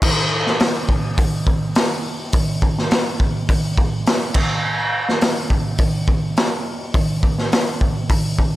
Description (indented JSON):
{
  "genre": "rock",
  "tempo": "104 BPM",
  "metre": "4/4",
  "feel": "straight",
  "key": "none",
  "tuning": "none",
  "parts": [
    { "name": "raw garage drum kit", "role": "drums", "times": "0.0-8.5 s", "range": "crash cymbal, hi-hat, kick drum, snare drum", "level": "-16 LUFS", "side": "equal", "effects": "none" }
  ],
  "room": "little or no reverb",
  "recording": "none",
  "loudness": "-16 LUFS",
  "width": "side -16 dB against mid",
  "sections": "0.0-8.6 A section",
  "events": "none",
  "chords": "none",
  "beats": "| 0.01 0.59 1.17 1.75 | 2.32 2.90 3.48 4.05 | 4.63 5.21 5.78 6.36 | 6.94 7.51 8.09"
}